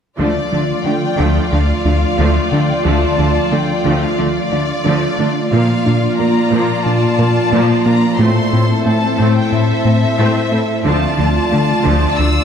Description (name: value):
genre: cinematic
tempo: 90 BPM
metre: 4/4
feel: straight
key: D minor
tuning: A4 = 440 Hz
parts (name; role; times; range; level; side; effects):
- warm symphonic violin section; melody; 0.2-12.4 s; D5 to E6; -22 LUFS; left 2 dB; none
- rich symphonic violin section; second line; 0.2-12.4 s; F4 to D5; -23 LUFS; left 3 dB; none
- rich symphonic viola section; accompaniment; 0.2-12.3 s; F3 to E4; -22 LUFS; right 2 dB; none
- airy breathy pad; sustained chords; 0.5-12.4 s; F3 to E5; -19 LUFS; equal; chorus
- glassy wavetable pluck; arpeggios; 0.2-12.4 s; D3 to Bb4; -24 LUFS; right 2 dB; none
- smooth synth bass; riff; 0.2-12.4 s; D2 to Bb3; -17 LUFS; left 2 dB; none
- rich symphonic cello section; bass; 0.2-12.3 s; A2 to D3; -21 LUFS; right 3 dB; none
room: wet concert hall reverb, RT60 2.1 s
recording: none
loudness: -12 LUFS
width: side -7 dB against mid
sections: 0.2-12.4 A section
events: none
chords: 0.2 Dm; 5.5 Bb; 8.2 Am; 10.9 Dm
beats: | 0.19 0.86 1.53 2.19 | 2.86 3.53 4.19 4.86 | 5.53 6.19 6.86 7.53 | 8.19 8.86 9.53 10.19 | 10.86 11.53 12.19